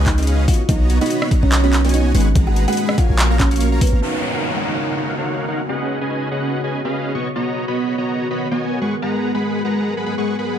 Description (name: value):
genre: future bass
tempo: 144 BPM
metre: 4/4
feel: swing 56% on 16ths, half-time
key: Eb minor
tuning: A4 = 440 Hz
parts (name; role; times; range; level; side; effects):
- ethereal airy pad; sustained chords; 0.0-10.6 s; Db3 to A#4; -27 LUFS; equal; ensemble chorus, built-in reverb, sidechain pumping
- dense compressed supersaw; riff; 0.0-10.6 s; Ab3 to Db6; -21 LUFS; equal; sidechain pumping, low-pass filter, dub echo
- warm 808-style bass; bass; 0.0-4.0 s; Ab1 to Db2; -16 LUFS; equal; sidechain pumping
- kalimba; melody; 0.1-4.0 s; Cb4 to Gb5; -24 LUFS; right 4 dB; sidechain pumping, dub echo
- dubstep drum kit; drums; 0.1-4.0 s; handclaps, hi-hat, rim click; -23 LUFS; equal; overdrive, studio reverb
- electronic kick drum; drums; 0.1-3.9 s; none; -16 LUFS; equal; overdrive, studio reverb
- downlifter; sound effects; 4.0-7.4 s; none; -27 LUFS; left 1 dB; none
room: light reverb, digital ambience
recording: dark, warm production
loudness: -16 LUFS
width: side -9 dB against mid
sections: 0.0-4.0 A section; 4.0-10.6 B section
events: drop 0.0-4.0; filter sweep on ambient pad 4.0-10.6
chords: 0.5 Bmaj7; 2.1 Abm9; 3.2 Bbm7; 4.0 Ebm7; 5.7 Db7sus4; 7.1 Bmaj7; 8.8 Abm9